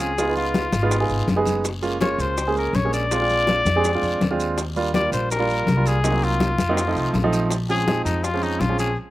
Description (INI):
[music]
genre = Afro-Cuban jazz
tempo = 164 BPM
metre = 4/4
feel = straight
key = unclear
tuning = A4 = 441 Hz
[part]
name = clear trumpet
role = melody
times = 0.0-9.0 s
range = Eb4 to D5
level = -24 LUFS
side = left 3 dB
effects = none
[part]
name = warm grand piano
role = accompaniment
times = 0.0-8.9 s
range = F3 to Ab4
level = -24 LUFS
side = right 3 dB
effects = slapback echo
[part]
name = upright bass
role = bass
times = 0.0-8.9 s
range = Gb1 to F2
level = -25 LUFS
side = equal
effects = none
[part]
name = bongos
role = percussion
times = 0.0-9.0 s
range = none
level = -31 LUFS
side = left 4 dB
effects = none
[part]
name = congas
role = percussion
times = 0.0-9.0 s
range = none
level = -26 LUFS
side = left 2 dB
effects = none
[part]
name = guiro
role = percussion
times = 0.0-9.0 s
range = none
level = -37 LUFS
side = left 5 dB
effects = none
[part]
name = maracas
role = percussion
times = 0.0-9.0 s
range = none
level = -34 LUFS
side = right 5 dB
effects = none
[sound]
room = little or no reverb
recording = recorded outdoors, with no room sound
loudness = -19 LUFS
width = side -16 dB against mid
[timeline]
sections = 0.0-9.1 A section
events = none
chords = 0.2 Db7; 1.6 Gbmaj9; 3.1 Bb7; 4.6 Ebmaj7; 6.0 Cm7b5; 6.8 F7; 7.5 Bbm7